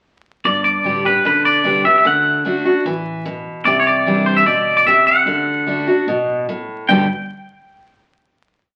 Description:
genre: honky-tonk and classic country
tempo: 149 BPM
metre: 4/4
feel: straight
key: G major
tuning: A4 = 439 Hz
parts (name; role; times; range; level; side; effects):
- picked steel-string acoustic guitar; accompaniment; 0.4-7.1 s; G2 to G4; -21 LUFS; equal; none
- upright bass; bass; 0.4-7.1 s; G1 to D2; -36 LUFS; equal; none
- twangy electric guitar; second line; 0.5-7.1 s; B4 to G5; -17 LUFS; equal; spring reverb
room: wet club reverb, RT60 0.7 s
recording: very old 78 rpm record, vinyl crackle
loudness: -16 LUFS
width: mono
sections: 0.4-6.9 interlude; 6.9-8.5 final chord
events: clean electric guitar solo 0.4-6.9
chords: 0.4 G; 2.0 D; 3.7 Cadd9; 5.3 D; 6.9 G

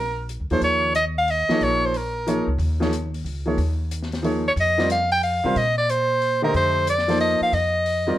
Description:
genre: modal jazz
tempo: 182 BPM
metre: 3/4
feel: swing 65% on 8ths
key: unclear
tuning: A4 = 444 Hz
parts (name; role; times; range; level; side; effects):
- breathy soprano saxophone; melody; 0.0-8.2 s; Bb4 to G5; -20 LUFS; equal; none
- upright bass; bass; 0.0-8.1 s; Bb1 to C3; -26 LUFS; equal; none
- open jazz drum kit; drums; 0.3-8.0 s; hi-hat, snare drum; -36 LUFS; left 3 dB; none
- warm baby grand piano; accompaniment; 0.5-8.2 s; D3 to Eb5; -24 LUFS; equal; none
room: light reverb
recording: none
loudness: -19 LUFS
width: side -13 dB against mid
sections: 0.6-8.2 A section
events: none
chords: 0.0 Bb7; 0.6 Eb9sus4; 4.6 F9sus4

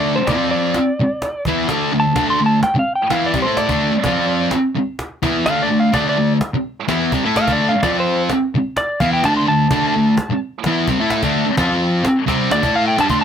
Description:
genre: garage rock duo or trio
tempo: 127 BPM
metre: 4/4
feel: straight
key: D minor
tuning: A4 = 440 Hz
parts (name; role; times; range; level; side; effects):
- electric slide guitar; melody; 0.0-13.2 s; C5 to C6; -19 LUFS; equal; none
- thick fuzz guitar; riff; 0.0-13.2 s; C3 to A4; -16 LUFS; equal; distortion
- cajon; drums; 0.3-13.2 s; none; -24 LUFS; equal; none
room: moderate studio reverb, RT60 0.5 s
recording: none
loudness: -15 LUFS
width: side -8 dB against mid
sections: 0.0-13.2 A section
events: electric slide guitar solo 0.0-13.2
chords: 0.3 F5; 0.7 D5; 4.1 F5; 4.5 D5; 7.8 F5; 8.3 D5; 11.6 F5; 12.0 D5

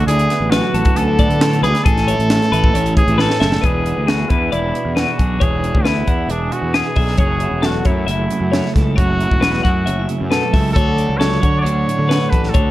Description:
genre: math rock and midwest emo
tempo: 135 BPM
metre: 4/4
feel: straight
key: unclear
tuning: A4 = 440 Hz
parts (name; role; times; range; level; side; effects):
- clear trumpet; melody; 0.0-12.7 s; D4 to D5; -21 LUFS; equal; slapback echo
- twelve-string electric guitar; accompaniment; 0.0-12.7 s; F#2 to G#4; -22 LUFS; right 4 dB; spring reverb
- twelve-string electric guitar; arpeggios; 0.0-12.7 s; D4 to F#5; -23 LUFS; left 7 dB; none
- fuzz fingered electric bass; bass; 0.0-12.7 s; E1 to D3; -19 LUFS; equal; overdrive
- crisp fusion drum kit; drums; 0.1-12.6 s; hi-hat, kick drum, snare drum; -18 LUFS; equal; none
room: little or no reverb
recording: dark, warm production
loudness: -14 LUFS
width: side -15 dB against mid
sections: 0.0-3.6 A section; 3.6-12.7 B section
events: drum fill 3.2-3.6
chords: 0.0 D69; 1.9 Amaj9; 3.6 E7; 7.2 F#m7; 10.8 Dmaj7

